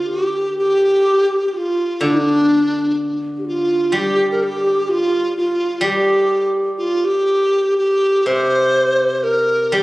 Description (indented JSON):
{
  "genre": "chinese traditional, Chinese chamber ensemble",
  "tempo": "62 BPM",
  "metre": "2/4",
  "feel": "rubato",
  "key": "G yu mode",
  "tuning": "A4 = 440 Hz",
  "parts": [
    { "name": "mellow hollow large dizi", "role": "melody", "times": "0.0-9.8 s", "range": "D4 to C5", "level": "-16 LUFS", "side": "equal", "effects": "none" },
    { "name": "breathy mellow low xiao", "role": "second line", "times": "0.0-6.8 s", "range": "D4 to G4", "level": "-22 LUFS", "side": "left 2 dB", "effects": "none" },
    { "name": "steel-string zither", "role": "accompaniment", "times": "0.0-9.8 s", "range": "C3 to G3", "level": "-21 LUFS", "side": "equal", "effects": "none" }
  ],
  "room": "light reverb",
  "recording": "recorded on a phone in the room, club reverb, compression",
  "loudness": "-15 LUFS",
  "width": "side -19 dB against mid",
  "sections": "0.0-7.8 A section; 7.8-9.8 B section",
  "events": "none",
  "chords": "none",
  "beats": "| 0.07 1.05 | 2.02 2.98 | 3.94 4.89 | 5.84 6.81 | 7.79 8.77 | 9.75"
}